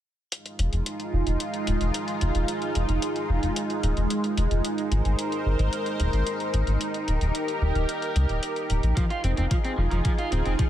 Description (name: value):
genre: synthwave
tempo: 111 BPM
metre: 4/4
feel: straight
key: F minor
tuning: A4 = 439 Hz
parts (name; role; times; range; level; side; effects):
- lush unison pad; sustained chords; 0.3-10.7 s; Ab3 to C5; -28 LUFS; right 1 dB; chorus, phaser, sidechain pumping
- electronic hi-hat; drums; 0.3-10.7 s; none; -34 LUFS; left 2 dB; none
- chorused synth bass; bass; 0.6-10.6 s; Eb1 to Db2; -24 LUFS; equal; none
- crunchy overdriven guitar; riff; 9.0-10.6 s; F3 to F4; -30 LUFS; right 1 dB; lush chorus, ping-pong delay
- electronic kick drum; drums; 9.0-10.7 s; none; -24 LUFS; equal; none
room: digital ambience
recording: none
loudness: -23 LUFS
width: side -12 dB against mid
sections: 0.3-10.7 A section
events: none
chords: 0.3 Fm7; 4.6 Abadd9; 6.8 Eb; 9.0 Fm7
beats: | 0.32 0.86 1.40 1.94 | 2.48 3.02 3.56 4.11 | 4.65 5.19 5.73 6.27 | 6.81 7.35 7.89 8.43 | 8.97 9.51 10.05 10.59